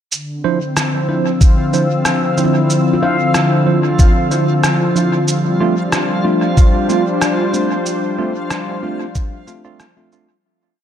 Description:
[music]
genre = ambient dub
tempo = 93 BPM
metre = 4/4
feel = straight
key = D minor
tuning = A4 = 440 Hz
[part]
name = warm analog pad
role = sustained chords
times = 0.1-10.4 s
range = D3 to E6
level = -16 LUFS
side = left 1 dB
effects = lush chorus
[part]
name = electronic cabasa and rim click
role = drums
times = 0.1-10.3 s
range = none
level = -21 LUFS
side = equal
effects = dub echo
[part]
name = backwards swelling texture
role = texture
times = 1.1-10.5 s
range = F4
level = -25 LUFS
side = right 2 dB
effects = built-in reverb
[part]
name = tine electric piano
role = stabs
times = 0.4-10.3 s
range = F3 to C5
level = -21 LUFS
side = right 4 dB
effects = slow stereo tremolo, dub echo
[part]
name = electronic kick drum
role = drums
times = 1.4-9.3 s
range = none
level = -10 LUFS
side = equal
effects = none
[part]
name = handpan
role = arpeggios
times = 2.4-6.1 s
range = E4 to F5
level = -23 LUFS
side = left 4 dB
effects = dub echo
[sound]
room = moderate echo chamber reverb, RT60 2.0 s, digital ambience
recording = none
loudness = -13 LUFS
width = side -9 dB against mid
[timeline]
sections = 0.1-10.4 groove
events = fade-out 7.0-10.4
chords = 0.1 Dm9; 5.3 G7sus4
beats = | 0.12 0.77 1.41 2.06 | 2.70 3.35 3.99 4.64 | 5.28 5.93 6.57 7.22 | 7.86 8.51 9.15 9.80

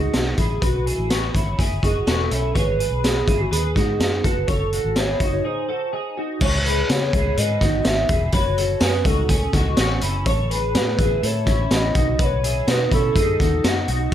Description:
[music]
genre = jangly indie pop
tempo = 124 BPM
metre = 4/4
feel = straight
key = C# minor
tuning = A4 = 440 Hz
[part]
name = hollow clarinet-like synth lead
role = melody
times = 0.0-14.1 s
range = F#4 to F#5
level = -25 LUFS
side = right 1 dB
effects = chorus, plate reverb
[part]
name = twelve-string electric guitar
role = arpeggios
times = 0.0-14.1 s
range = B3 to C#5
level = -26 LUFS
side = left 1 dB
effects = analog chorus
[part]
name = vintage muted fingered electric bass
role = bass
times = 0.0-14.1 s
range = E1 to C#3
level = -24 LUFS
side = equal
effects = none
[part]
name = raw garage drum kit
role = drums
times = 0.1-14.1 s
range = crash cymbal, hi-hat, kick drum, snare drum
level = -21 LUFS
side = equal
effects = none
[sound]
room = light reverb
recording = none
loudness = -18 LUFS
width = side -10 dB against mid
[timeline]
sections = 0.0-6.4 A section; 6.4-14.1 B section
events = break 5.4-6.4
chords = 0.0 C#m7; 0.6 Bsus4; 2.5 G#m7; 4.2 F#m7; 5.4 G#; 6.4 C#madd9; 8.3 F#m; 10.3 Aadd9; 11.9 Badd9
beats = 0.14 | 0.62 1.10 1.58 2.07 | 2.55 3.03 3.52 4.00 | 4.48 4.96 5.45 5.93 | 6.41 6.89 7.37 7.85 | 8.34 8.82 9.30 9.78 | 10.26 10.74 11.23 11.71 | 12.19 12.67 13.15 13.64 | 14.12

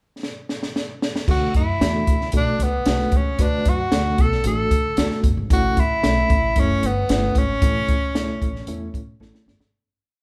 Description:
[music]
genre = uptempo 1960s-style soul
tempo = 114 BPM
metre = 4/4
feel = straight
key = D major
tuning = A4 = 440 Hz
[part]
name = compact cocktail drum kit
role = drums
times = 0.2-9.7 s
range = crash cymbal, hi-hat, kick drum, snare drum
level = -23 LUFS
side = equal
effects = none
[part]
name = breathy tenor saxophone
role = melody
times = 1.3-9.2 s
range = B3 to A4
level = -25 LUFS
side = equal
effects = none
[part]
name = reed electric piano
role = accompaniment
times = 1.3-9.5 s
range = A2 to B4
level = -28 LUFS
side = equal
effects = fast tremolo
[part]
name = upright bass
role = bass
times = 1.3-9.7 s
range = F#1 to D3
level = -28 LUFS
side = equal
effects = none
[sound]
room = moderate large studio reverb, RT60 1.2 s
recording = band playing live in one room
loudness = -20 LUFS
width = mono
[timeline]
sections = 0.0-1.3 pickup bar; 1.3-9.7 verse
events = drum fill 0.2-1.3, 9.2-9.7; fade-out 7.6-9.7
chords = 0.0 N.C.; 1.3 D; 5.5 A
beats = 0.22 0.75 | 1.28 1.81 2.33 2.86 | 3.39 3.92 4.45 4.98 | 5.50 6.03 6.56 7.09 | 7.62 8.15 8.68 9.20

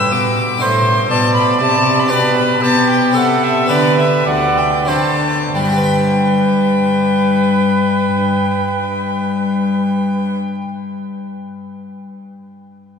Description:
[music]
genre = classical, baroque-style sonata movement with continuo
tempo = 88-122 BPM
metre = 3/4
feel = straight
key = G major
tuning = A4 = 445 Hz
[part]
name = warm violin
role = melody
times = 0.0-10.4 s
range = D5 to E6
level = -18 LUFS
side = left 3 dB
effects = none
[part]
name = clear oboe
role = second line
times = 0.0-10.4 s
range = G4 to D5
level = -19 LUFS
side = right 4 dB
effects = none
[part]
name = harpsichord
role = accompaniment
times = 0.0-10.7 s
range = D2 to G5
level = -21 LUFS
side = right 1 dB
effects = none
[part]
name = rich cello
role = bass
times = 0.0-10.4 s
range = D2 to B3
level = -17 LUFS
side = left 2 dB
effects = none
[sound]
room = wet cathedral reverb, RT60 5.6 s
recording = recorded in a church or concert hall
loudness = -12 LUFS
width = side -6 dB against mid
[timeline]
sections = 0.0-5.6 A section; 5.6-9.6 B section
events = slowing down 1.4-5.6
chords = 0.0 G; 0.6 D7/A; 2.1 G/B; 3.1 Am7/C; 3.7 G/D; 4.9 D7; 5.6 G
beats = 0.12 | 0.61 1.11 1.60 | 2.11 2.62 3.15 | 3.70 4.28 4.89 | 5.55 6.23 6.90 | 7.58 8.25 8.93

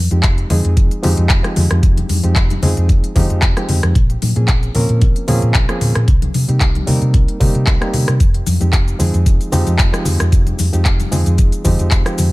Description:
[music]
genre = nu-disco, nu disco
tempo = 113 BPM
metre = 4/4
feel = swing 54% on 16ths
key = F minor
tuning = A4 = 436 Hz
[part]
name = hollow-body short-scale fingered electric bass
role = bass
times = 0.0-12.3 s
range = F1 to C3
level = -16 LUFS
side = equal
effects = tube saturation
[part]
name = barky reed electric piano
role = accompaniment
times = 0.1-12.3 s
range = F3 to Bb4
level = -22 LUFS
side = right 1 dB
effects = overdrive, fast tremolo, sidechain pumping, digital delay
[part]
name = pop drum kit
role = drums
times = 0.1-12.3 s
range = handclaps, hi-hat, rim click, shaker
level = -22 LUFS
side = left 1 dB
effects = none
[part]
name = electronic kick drum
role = drums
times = 0.2-12.0 s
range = none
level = -14 LUFS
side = equal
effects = none
[part]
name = congas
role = percussion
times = 0.5-12.3 s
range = none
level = -22 LUFS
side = left 2 dB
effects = none
[sound]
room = digital ambience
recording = none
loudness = -12 LUFS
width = side -20 dB against mid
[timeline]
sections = 0.0-12.3 A section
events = none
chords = 0.0 Fm7; 4.0 Bbm7; 6.1 Cm7; 8.2 Fm7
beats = 0.24 0.77 1.30 | 1.83 2.36 2.89 3.42 | 3.96 4.49 5.02 5.55 | 6.08 6.61 7.14 7.67 | 8.20 8.73 9.27 9.80 | 10.33 10.86 11.39 11.92

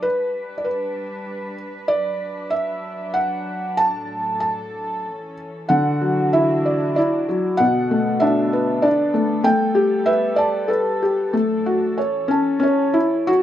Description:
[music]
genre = children's music, lullaby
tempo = 95 BPM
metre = 3/4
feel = rubato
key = D major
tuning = A4 = 440 Hz
[part]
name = felt-muted upright piano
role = melody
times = 0.0-13.4 s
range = B2 to A5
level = -18 LUFS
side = equal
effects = none
[part]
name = dark studio string section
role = sustained chords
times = 0.0-13.4 s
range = A2 to B4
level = -33 LUFS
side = equal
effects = none
[sound]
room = small room ambience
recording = rough home demo mix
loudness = -18 LUFS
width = side -11 dB against mid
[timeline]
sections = 0.0-13.3 A section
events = none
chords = 0.0 G; 1.9 Bm; 3.8 D/A; 5.1 A; 5.7 Dadd9; 7.6 Bm7; 9.5 Gadd9; 11.3 D/A; 12.0 A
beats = | 0.03 0.65 1.27 | 1.89 2.52 3.15 | 3.78 4.41 5.05 | 5.70 6.34 6.97 | 7.59 8.22 8.84 | 9.45 10.07 10.71 | 11.34 11.98 12.63 | 13.29

